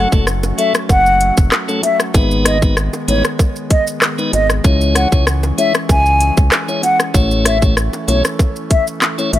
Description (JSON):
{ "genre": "dancehall", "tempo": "96 BPM", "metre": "4/4", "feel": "straight", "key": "C# minor", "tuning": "A4 = 440 Hz", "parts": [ { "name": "mellow hollow silver concert flute", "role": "melody", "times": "0.0-9.4 s", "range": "C#5 to G#5", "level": "-17 LUFS", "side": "left 1 dB", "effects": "tape echo" }, { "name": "tonewheel organ", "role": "accompaniment", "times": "0.0-9.3 s", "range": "F#3 to C#5", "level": "-20 LUFS", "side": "left 2 dB", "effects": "stopped rotary speaker" }, { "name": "pipe organ, foundations", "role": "sustained chords", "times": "0.0-9.4 s", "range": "D#3 to C#4", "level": "-25 LUFS", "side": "left 1 dB", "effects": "sidechain pumping" }, { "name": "round analog bass", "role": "bass", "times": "0.0-9.4 s", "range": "F#1 to C#2", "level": "-17 LUFS", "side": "equal", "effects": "none" }, { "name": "island pop drum kit", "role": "drums", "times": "0.1-9.4 s", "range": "handclaps, hi-hat, kick drum, rim click, shaker", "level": "-15 LUFS", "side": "equal", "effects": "overdrive" }, { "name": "bongos", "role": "percussion", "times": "0.4-9.4 s", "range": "none", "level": "-26 LUFS", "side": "right 2 dB", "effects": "none" } ], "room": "light reverb, studio reverb", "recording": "none", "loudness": "-12 LUFS", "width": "side -13 dB against mid", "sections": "0.0-9.4 A section", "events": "none", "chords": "0.0 F#m; 2.1 G#m; 4.6 C#m; 7.1 A", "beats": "0.27 0.89 1.52 | 2.14 2.77 3.39 4.02 | 4.64 5.27 5.89 6.52 | 7.14 7.77 8.39 9.02" }